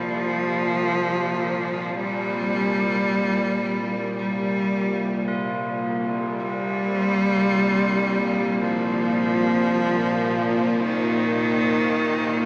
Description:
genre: dark ambient drone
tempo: free time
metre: none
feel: none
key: unclear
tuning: A4 = 440 Hz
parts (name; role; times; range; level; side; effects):
- clear cello; melody; 0.0-12.5 s; Eb3 to G3; -22 LUFS; equal; tape echo
- tubular bells; arpeggios; 0.0-12.5 s; F4; -34 LUFS; equal; tape echo
- bowed-like drone; drone; 0.0-12.5 s; C2 to Bb2; -25 LUFS; equal; built-in reverb
room: wet huge ambient reverb, RT60 7.8 s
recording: small speaker sound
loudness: -20 LUFS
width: side -28 dB against mid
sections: 0.0-12.5 A section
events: fade-in on tubular bells 0.0-12.5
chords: 0.0 C7(no3)

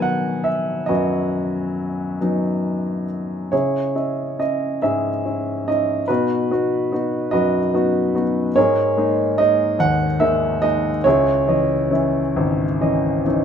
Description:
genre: classical, lyrical solo piano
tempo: 44-49 BPM (dotted quarters)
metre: 6/8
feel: rubato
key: C# dorian from 3.5 s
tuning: A4 = 436 Hz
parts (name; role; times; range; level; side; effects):
- warm grand piano; solo; 0.0-13.4 s; G#1 to A5; -17 LUFS; equal; none
room: light reverb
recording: minimal, uncompressed stereo recording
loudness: -17 LUFS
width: side -8 dB against mid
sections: 0.0-3.5 A section; 3.5-13.4 B section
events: none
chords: 0.0 B; 3.5 C#madd9; 6.1 B; 8.6 G#sus2; 11.0 C#madd9

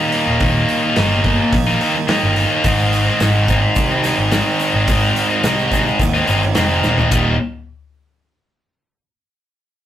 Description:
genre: indie rock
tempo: 108 BPM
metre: 4/4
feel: straight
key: Eb major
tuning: A4 = 439 Hz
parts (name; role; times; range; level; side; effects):
- scooped high-gain guitar; riff; 0.0-7.3 s; Eb2 to Eb4; -17 LUFS; left 3 dB; distortion
- sludgy distorted guitar; riff; 0.0-7.3 s; Eb2 to Eb4; -20 LUFS; right 4 dB; overdrive
- loose indie drum kit; drums; 0.1-7.2 s; hi-hat, kick drum, ride cymbal, snare drum, toms; -22 LUFS; equal; none
- growling picked electric bass; bass; 0.3-7.4 s; Eb1 to Eb2; -19 LUFS; equal; overdrive
- egg shaker; percussion; 2.6-7.4 s; none; -37 LUFS; right 7 dB; none
room: moderate studio reverb, RT60 0.5 s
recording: rough rehearsal-room recording, tube saturation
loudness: -13 LUFS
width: side -11 dB against mid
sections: 0.0-7.1 A section; 7.1-9.3 B section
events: drum fill 6.8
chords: 0.0 Eb; 2.6 Ab; 7.1 Eb

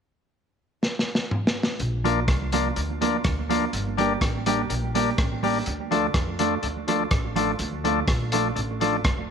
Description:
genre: ska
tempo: 124 BPM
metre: 4/4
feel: straight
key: D minor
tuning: A4 = 442 Hz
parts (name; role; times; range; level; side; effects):
- crunchy breakbeat drum kit; drums; 0.8-9.2 s; hi-hat, kick drum, rim click, snare drum, toms; -26 LUFS; equal; none
- upright bass; bass; 1.8-9.3 s; F1 to F2; -30 LUFS; equal; none
- mellow electric guitar; accompaniment; 2.0-9.1 s; F3 to G4; -28 LUFS; right 10 dB; spring reverb, tape echo
- percussive tonewheel organ; stabs; 2.0-9.0 s; D4 to D5; -26 LUFS; left 10 dB; overdrive
room: moderate plate reverb, RT60 1.6 s, studio ambience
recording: 1960s-style stereo with parts hard left and right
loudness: -22 LUFS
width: side -7 dB against mid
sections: 0.0-1.8 A section; 1.8-9.3 B section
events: drum fill 0.8-1.8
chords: 0.0 N.C.; 1.8 Bb; 3.7 Gm; 5.7 Dm

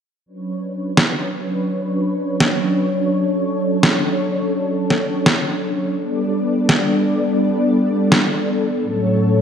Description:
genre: synthwave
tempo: 84 BPM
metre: 4/4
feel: straight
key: B minor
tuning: A4 = 440 Hz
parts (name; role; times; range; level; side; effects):
- analog string pad; sustained chords; 0.3-9.4 s; A2 to D5; -18 LUFS; equal; ensemble chorus
- electronic snare drum; drums; 1.0-8.3 s; none; -18 LUFS; equal; gated reverb
room: moderate lush hall reverb, RT60 2.5 s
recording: none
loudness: -16 LUFS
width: side -8 dB against mid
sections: 0.3-9.4 A section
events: filter sweep on analog synth pad 0.3-9.4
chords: 0.3 Bmadd9; 6.0 Gadd9; 8.8 F#m/A

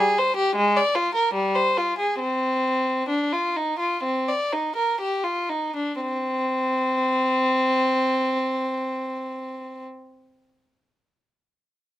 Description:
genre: classical, baroque-style suite movement for unaccompanied violin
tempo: 58-80 BPM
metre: 4/4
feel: rubato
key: C minor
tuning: A4 = 438 Hz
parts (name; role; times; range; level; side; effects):
- warm violin; solo; 0.0-9.8 s; G3 to D5; -21 LUFS; equal; none
room: little or no reverb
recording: close, detailed microphones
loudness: -21 LUFS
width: side -14 dB against mid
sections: 0.0-6.0 A section; 6.0-10.0 B section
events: slowing down 0.0-6.0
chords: none

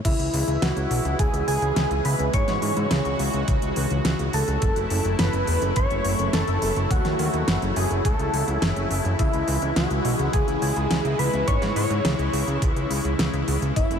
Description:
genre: synthwave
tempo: 105 BPM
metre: 4/4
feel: straight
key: C# minor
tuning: A4 = 440 Hz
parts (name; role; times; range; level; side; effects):
- wide unison lead; melody; 0.0-14.0 s; E4 to C#5; -28 LUFS; equal; ping-pong delay
- phased analog pad; sustained chords; 0.0-14.0 s; C#3 to F#4; -28 LUFS; left 1 dB; phaser, chorus, sidechain pumping
- fat analog bass; bass; 0.0-14.0 s; E1 to G#2; -25 LUFS; equal; sidechain pumping
- electronic kick drum; drums; 0.0-13.9 s; none; -24 LUFS; equal; none
- FM electric piano with soft pad layer; second line; 0.1-14.0 s; E5 to C#6; -32 LUFS; left 1 dB; chorus, phaser, ping-pong delay
- pop drum kit; drums; 0.1-14.0 s; crash cymbal, hi-hat, snare drum; -29 LUFS; equal; none
room: moderate huge ambient reverb, RT60 8.6 s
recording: dreamy mix soaked in reverb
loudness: -20 LUFS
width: side -7 dB against mid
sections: 0.0-14.0 A section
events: none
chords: 0.0 C#m; 4.6 F#m7; 9.2 C#m

